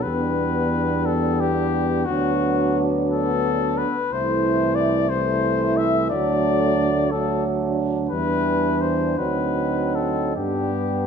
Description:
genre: classical, hymn-like piece for brass band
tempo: 49-63 BPM (dotted quarters)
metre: 6/8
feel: rubato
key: unclear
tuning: A4 = 438 Hz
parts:
  - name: clear cornet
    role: melody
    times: 0.0-11.1 s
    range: F#4 to E5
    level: -24 LUFS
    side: left 7 dB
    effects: none
  - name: mellow French horn section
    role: second line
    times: 0.0-11.1 s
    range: D4 to E4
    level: -25 LUFS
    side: right 7 dB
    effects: none
  - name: clear trombone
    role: accompaniment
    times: 0.0-11.1 s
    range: E3 to G3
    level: -27 LUFS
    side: right 4 dB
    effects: none
  - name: warm trombone section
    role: accompaniment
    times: 0.0-11.1 s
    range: G3 to C4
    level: -28 LUFS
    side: left 4 dB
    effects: none
  - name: mellow tuba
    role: bass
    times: 0.0-11.1 s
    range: C2 to G2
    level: -26 LUFS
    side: right 1 dB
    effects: none
room: moderate recital hall reverb, RT60 1.4 s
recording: none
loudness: -19 LUFS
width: side -6 dB against mid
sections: 0.0-11.1 A section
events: none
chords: 0.0 Em7; 2.1 Bm/D; 4.1 Am/C; 6.1 D; 8.1 Em7; 9.2 D7b9; 10.4 G

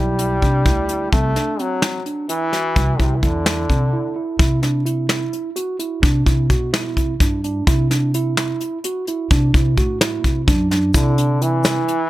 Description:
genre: progressive instrumental, band music in an uneven meter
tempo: 257 BPM (eighths)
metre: 7/8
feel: straight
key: C lydian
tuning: A4 = 440 Hz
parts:
  - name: brilliant trombone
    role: second line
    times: 0.0-4.2, 10.9-12.1 s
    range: C3 to A3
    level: -22 LUFS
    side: left 2 dB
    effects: tape echo
  - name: mellow tine electric piano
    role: arpeggios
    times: 0.0-12.0 s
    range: C4 to F#4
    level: -23 LUFS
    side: right 4 dB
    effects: tape echo
  - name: upright bass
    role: bass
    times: 0.0-11.8 s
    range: B1 to C3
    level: -20 LUFS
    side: equal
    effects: none
  - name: soft brush drum kit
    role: drums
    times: 0.2-12.0 s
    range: hi-hat, kick drum, snare drum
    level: -18 LUFS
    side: equal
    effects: none
  - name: tube shaker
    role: percussion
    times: 10.9-11.9 s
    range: none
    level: -31 LUFS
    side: left 5 dB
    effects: none
room: light reverb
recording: none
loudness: -16 LUFS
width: side -16 dB against mid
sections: 0.0-4.4 A section; 4.4-12.1 B section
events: break 3.9-4.4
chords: 0.0 Em7; 1.1 Amadd11/C (rootless); 4.4 Cmaj7; 7.7 F#m7b5; 10.9 E7(no3)/C

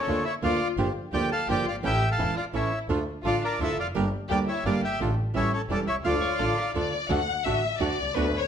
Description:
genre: tango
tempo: 171 BPM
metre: 3/4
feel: rubato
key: D harmonic minor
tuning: A4 = 440 Hz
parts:
  - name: bandoneon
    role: melody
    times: 0.0-6.7 s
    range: A4 to A5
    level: -29 LUFS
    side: equal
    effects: none
  - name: warm studio violin section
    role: second line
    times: 0.0-8.5 s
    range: C#4 to F#5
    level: -31 LUFS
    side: left 6 dB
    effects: none
  - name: nylon-string guitar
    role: accompaniment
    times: 0.1-8.2 s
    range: D3 to G4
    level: -30 LUFS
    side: right 4 dB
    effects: none
  - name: bandoneon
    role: stabs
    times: 0.1-8.3 s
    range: Bb3 to B4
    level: -37 LUFS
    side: right 2 dB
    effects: none
  - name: clear double bass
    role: bass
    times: 0.1-8.3 s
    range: E1 to D2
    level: -30 LUFS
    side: equal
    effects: none
  - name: vintage hollow-body jazz guitar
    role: second line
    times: 6.2-7.1 s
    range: A4 to C#5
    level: -36 LUFS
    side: left 6 dB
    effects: none
room: moderate large studio reverb, RT60 1.2 s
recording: dark, warm production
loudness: -24 LUFS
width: side -8 dB against mid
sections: 0.0-7.1 A section; 7.1-8.5 B section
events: violin section solo 7.1-8.5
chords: 0.0 Bb/D; 0.8 Gm7; 1.8 A; 2.9 Dm; 3.9 Gm; 5.0 Dm/A; 5.3 A7; 6.0 Dm; 7.1 D

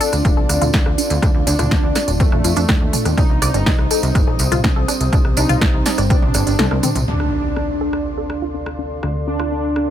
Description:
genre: melodic techno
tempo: 123 BPM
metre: 4/4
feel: straight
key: D phrygian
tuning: A4 = 440 Hz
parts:
  - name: wide unison lead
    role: melody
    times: 0.0-9.9 s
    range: A3 to Eb4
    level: -24 LUFS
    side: right 1 dB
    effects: lush chorus, sidechain pumping, dub echo
  - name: dark analog pad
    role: sustained chords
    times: 0.0-9.9 s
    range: G3 to D5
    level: -29 LUFS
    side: left 2 dB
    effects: chorus, sidechain pumping
  - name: tight sequenced synth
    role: arpeggios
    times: 0.0-9.8 s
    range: C4 to D5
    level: -25 LUFS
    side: left 1 dB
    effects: chorus, sidechain pumping, tape echo
  - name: techno drum kit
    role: drums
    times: 0.0-9.9 s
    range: hi-hat, rim click, snare drum, toms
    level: -22 LUFS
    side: equal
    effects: sidechain pumping on hats, sidechain pumping on toms
  - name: tambourine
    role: percussion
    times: 0.0-7.1 s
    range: none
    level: -27 LUFS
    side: right 5 dB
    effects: none
  - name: warbly tape-like pad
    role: texture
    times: 0.0-9.9 s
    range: C4 to Eb6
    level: -28 LUFS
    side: right 1 dB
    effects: chorus, built-in reverb, sidechain pumping
  - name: plucky analog bass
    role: bass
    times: 0.1-9.9 s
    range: D1 to F2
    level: -21 LUFS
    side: equal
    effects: sidechain pumping
  - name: electronic kick drum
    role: drums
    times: 0.2-6.2 s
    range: none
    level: -17 LUFS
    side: equal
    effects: none
  - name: impact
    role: sound effects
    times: 7.1-9.0 s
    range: none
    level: -26 LUFS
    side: equal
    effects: none
room: little or no reverb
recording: none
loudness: -15 LUFS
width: side -10 dB against mid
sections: 0.0-7.1 A section; 7.1-9.9 B section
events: filter sweep on synth arpeggio sound 0.0-7.1; kick drops out 6.6-7.1; drum fill 6.6-7.1; impact 7.1-9.0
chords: 0.0 Dm7; 3.2 Cm; 7.1 Dm7

